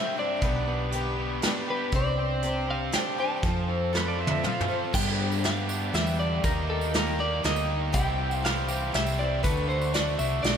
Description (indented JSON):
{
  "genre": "folk rock and heartland rock",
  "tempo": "120 BPM",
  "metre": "3/4",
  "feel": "straight",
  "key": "G mixolydian",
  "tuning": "A4 = 440 Hz",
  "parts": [
    { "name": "electric guitar at the edge of break-up", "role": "melody", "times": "0.0-10.6 s", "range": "A4 to A5", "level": "-31 LUFS", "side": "equal", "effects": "tape echo" },
    { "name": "picked twelve-string acoustic guitar", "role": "accompaniment", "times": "0.0-10.6 s", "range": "G2 to C5", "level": "-33 LUFS", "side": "left 6 dB", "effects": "slapback echo" },
    { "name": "cranked stack guitar", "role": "riff", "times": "0.0-10.6 s", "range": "G2 to A4", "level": "-32 LUFS", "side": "right 2 dB", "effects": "overdrive, slapback echo" },
    { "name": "hollow-body short-scale fingered electric bass", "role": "bass", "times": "0.4-10.6 s", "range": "B1 to G2", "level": "-30 LUFS", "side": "equal", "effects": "none" },
    { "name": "soft brush drum kit", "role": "drums", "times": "0.4-10.6 s", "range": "crash cymbal, hi-hat, kick drum, snare drum, toms", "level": "-29 LUFS", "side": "right 1 dB", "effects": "none" },
    { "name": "pedal steel guitar", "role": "second line", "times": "4.0-4.8 s", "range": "B4 to F5", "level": "-34 LUFS", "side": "right 4 dB", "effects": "slapback echo, tape echo" },
    { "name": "tambourine", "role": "percussion", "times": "4.9-10.3 s", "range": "none", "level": "-44 LUFS", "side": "right 8 dB", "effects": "none" }
  ],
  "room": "moderate lush hall reverb, RT60 2.6 s",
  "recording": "big arena sound",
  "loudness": "-24 LUFS",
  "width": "side -8 dB against mid",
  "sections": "0.0-4.9 A section; 4.9-10.6 B section",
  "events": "drum fill 3.9-4.9",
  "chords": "0.4 G/B; 1.9 Csus2; 3.4 F; 4.9 G; 6.4 Eb; 7.9 C; 9.4 D"
}